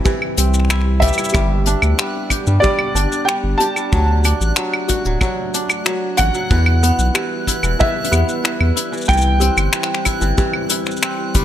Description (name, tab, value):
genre	folktronica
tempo	93 BPM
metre	4/4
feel	straight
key	G major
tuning	A4 = 439 Hz
part	kalimba	second line	0.0-10.7 s	F#4 to B4	-27 LUFS	right 1 dB	ping-pong delay
part	warbly tape-like pad	sustained chords	0.0-11.4 s	G3 to E5	-28 LUFS	equal	chorus, built-in reverb
part	kora	arpeggios	0.0-11.4 s	E3 to G4	-24 LUFS	equal	none
part	kick drum	drums	0.1-11.4 s	none	-22 LUFS	equal	none
part	soft brush drum kit	drums	0.1-11.4 s	claves, finger snaps, hi-hat, shaker	-21 LUFS	left 2 dB	none
part	warm sub bass	bass	0.4-11.4 s	D1 to G2	-16 LUFS	equal	none
part	felt-muted upright piano	melody	1.0-11.3 s	D5 to A5	-21 LUFS	equal	tape echo
part	backwards swelling texture	texture	1.9-11.4 s	F#6	-30 LUFS	right 2 dB	built-in reverb
room	light reverb, small room ambience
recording	none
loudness	-14 LUFS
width	side -11 dB against mid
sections	0.0-11.4 A section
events	none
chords	0.0 C; 1.3 G; 3.9 D; 6.5 Em; 9.1 C